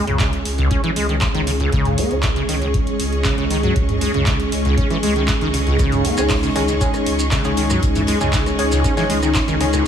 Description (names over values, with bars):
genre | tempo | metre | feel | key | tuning
acid house | 118 BPM | 4/4 | straight | unclear | A4 = 440 Hz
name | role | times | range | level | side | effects
string machine, full ensemble | sustained chords | 0.0-9.9 s | G#3 to G#4 | -22 LUFS | equal | ensemble chorus, sidechain pumping
acid bass, saw | riff | 0.0-9.8 s | C#2 to C#4 | -22 LUFS | equal | overdrive, analog chorus, tape echo
clear studio string section | texture | 0.0-9.9 s | C#4 to C#6 | -30 LUFS | left 1 dB | sidechain pumping
saturated sub bass | bass | 0.1-9.8 s | C#2 | -23 LUFS | equal | sidechain pumping
booming analog drum machine | drums | 0.1-9.8 s | handclaps, hi-hat, rim click, toms | -25 LUFS | equal | none
electronic kick drum | drums | 0.2-9.5 s | none | -22 LUFS | equal | overdrive
tight funk drum kit | drums | 5.8-9.7 s | hi-hat, snare drum | -34 LUFS | left 4 dB | none
maracas | percussion | 5.8-9.8 s | none | -30 LUFS | right 3 dB | none
band-passed chord stab | stabs | 6.2-9.7 s | G#3 to G#4 | -24 LUFS | right 1 dB | chorus, phaser, tape echo
room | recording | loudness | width
light reverb | small room ambience | -16 LUFS | side -8 dB against mid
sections
0.0-9.9 A section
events
fade-in on string section 0.0-9.9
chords
0.0 C#5